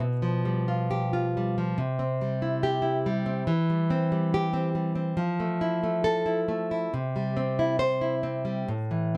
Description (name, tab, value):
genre	romantic piece for solo classical guitar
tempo	69 BPM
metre	2/4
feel	rubato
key	C major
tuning	A4 = 439 Hz
part	nylon-string guitar	solo	0.0-9.2 s	A2 to C5	-27 LUFS	equal	none
room	light reverb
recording	none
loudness	-27 LUFS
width	mono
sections	0.0-9.2 A section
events	none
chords	0.0 G7/B; 1.8 C; 3.5 C/E; 5.2 Fmaj7; 6.9 C